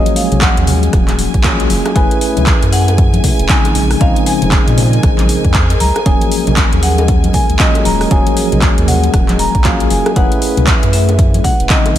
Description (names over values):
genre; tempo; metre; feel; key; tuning
deep house; 117 BPM; 4/4; swing 61% on 16ths; Eb minor; A4 = 440 Hz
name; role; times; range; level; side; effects
marimba with medium hard mallets; melody; 0.0-12.0 s; Eb5 to Bb5; -21 LUFS; equal; ping-pong delay
dark analog pad; sustained chords; 0.0-12.0 s; Ab3 to Ab5; -24 LUFS; left 1 dB; chorus, sidechain pumping
tine electric piano; stabs; 0.0-12.0 s; Db3 to Cb5; -17 LUFS; left 1 dB; slow stereo tremolo, sidechain pumping, ping-pong delay
rich studio violin section; texture; 0.0-12.0 s; Ab5; -28 LUFS; right 2 dB; none
deep house drum kit; drums; 0.1-12.0 s; handclaps, hi-hat, rim click; -19 LUFS; equal; overdrive, studio reverb
round analog bass; bass; 0.3-12.0 s; Eb1 to Bb2; -15 LUFS; equal; tube saturation
congas and bongos; percussion; 0.3-12.0 s; none; -21 LUFS; left 3 dB; none
electronic kick drum; drums; 0.4-11.8 s; none; -13 LUFS; equal; overdrive, studio reverb
room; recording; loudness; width
digital ambience; none; -10 LUFS; side -12 dB against mid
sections
0.0-12.0 A section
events
none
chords
0.0 Ebm11; 2.0 Gbm11; 3.8 Bbm11; 6.1 Ebm11; 10.2 Gbm11